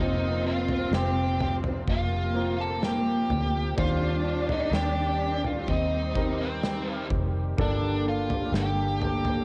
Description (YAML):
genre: pop ballad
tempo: 63 BPM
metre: 4/4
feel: straight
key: unclear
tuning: A4 = 442 Hz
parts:
  - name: smooth overdriven lead guitar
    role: melody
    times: 0.0-9.4 s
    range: C4 to A5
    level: -33 LUFS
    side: equal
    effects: none
  - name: dark symphonic cello section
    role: second line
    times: 0.0-9.4 s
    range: Bb3 to D4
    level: -34 LUFS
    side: equal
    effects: cassette tape
  - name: warm concert grand piano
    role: accompaniment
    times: 0.0-9.4 s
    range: G2 to C5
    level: -36 LUFS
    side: equal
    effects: cassette tape
  - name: sweeping resonant pad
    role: sustained chords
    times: 0.0-9.4 s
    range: Bb2 to A4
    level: -41 LUFS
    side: equal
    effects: none
  - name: vintage muted fingered electric bass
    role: bass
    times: 0.0-9.4 s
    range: F1 to Eb2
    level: -32 LUFS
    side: equal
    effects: transformer saturation
  - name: loose indie drum kit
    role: drums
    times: 0.7-9.4 s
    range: kick drum, snare drum, toms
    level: -34 LUFS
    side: equal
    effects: cassette tape
room: little or no reverb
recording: home recording on cassette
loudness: -27 LUFS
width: mono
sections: 0.0-9.4 A section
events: none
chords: 0.0 Fsus4; 3.8 Cm/Eb; 7.6 Gmadd9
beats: 0.92 1.87 2.82 | 3.77 4.72 5.68 6.63 | 7.58 8.54